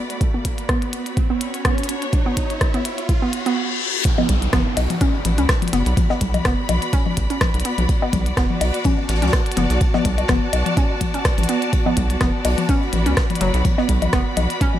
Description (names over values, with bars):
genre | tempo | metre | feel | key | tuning
minimal techno | 125 BPM | 4/4 | swing 55% on 16ths | B minor | A4 = 440 Hz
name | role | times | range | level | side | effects
hollow square pluck | riff | 0.0-14.6 s | F#3 to C#4 | -25 LUFS | right 1 dB | chorus, sidechain pumping, dub echo
riser, reverse cymbal and downlifter | sound effects | 0.2-7.9 s | none | -27 LUFS | equal | none
clear symphonic string section | texture | 0.0-14.8 s | B3 to B5 | -27 LUFS | equal | sidechain pumping
minimal click drum kit | drums | 0.1-14.7 s | hi-hat, rim click | -25 LUFS | left 1 dB | studio reverb
electronic kick drum | drums | 0.2-14.7 s | none | -20 LUFS | equal | studio reverb
soft brush drum kit | drums | 4.0-14.7 s | hi-hat, ride cymbal, snare drum | -35 LUFS | left 1 dB | sidechain pumping on cymbals, high-pass filter on cymbals, studio reverb, sidechain pumping on hats, high-pass filter on hats, high-pass filter on snare, high-pass filter on room
electronic toms, bongos and congas | percussion | 4.2-14.8 s | none | -25 LUFS | left 5 dB | studio reverb, digital delay
rubbery square bass | bass | 4.3-14.5 s | F#1 to C#2 | -21 LUFS | equal | sidechain pumping
room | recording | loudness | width
small room ambience | none | -17 LUFS | side -12 dB against mid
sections
0.0-4.0 A section; 4.0-14.8 B section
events
build-up 0.0-4.0; riser 0.2-3.6; filter sweep on synth arpeggio sound 0.0-4.0; reverse cymbal 3.1-4.0; drop 4.0-14.8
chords
0.0 Bm